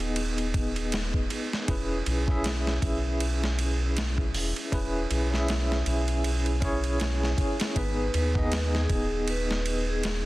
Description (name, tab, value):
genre	trip hop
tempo	79 BPM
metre	4/4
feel	swing 57% on 16ths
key	unclear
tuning	A4 = 440 Hz
part	bell-like tine electric piano	accompaniment	0.0-10.3 s	B3 to E5	-31 LUFS	equal	tremolo, low-pass filter, tape echo
part	round analog bass	bass	0.0-10.3 s	D#1 to D#2	-28 LUFS	equal	tube saturation
part	dusty soul sampler-style drum kit	drums	0.0-10.2 s	hi-hat, kick drum, ride cymbal, snare drum	-30 LUFS	equal	overdrive
part	vibraphone with medium mallets	melody	7.8-10.3 s	G#4 to B4	-33 LUFS	equal	none
room	digital ambience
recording	dense, heavily limited modern master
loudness	-25 LUFS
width	side -18 dB against mid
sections	0.0-10.3 A section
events	none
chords	0.0 G#m; 1.7 E6; 7.8 G#m